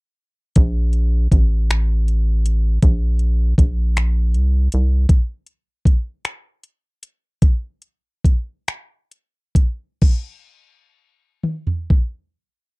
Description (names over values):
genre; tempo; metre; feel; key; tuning
slow six-eight R&B; 42-53 BPM (dotted quarters); 6/8; straight; unclear; A4 = 438 Hz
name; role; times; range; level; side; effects
rubbery square bass; bass; 0.6-5.1 s; A1 to C2; -16 LUFS; equal; none
smooth R&B drum kit; drums; 0.6-12.1 s; crash cymbal, finger snaps, hi-hat, kick drum, toms; -15 LUFS; equal; none
room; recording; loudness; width
little or no reverb; dry, close 1970s-style studio recording; -16 LUFS; side -29 dB against mid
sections
0.6-10.0 A section; 10.0-12.8 B section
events
break 0.0-0.6; slowing down 5.1-10.0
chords
none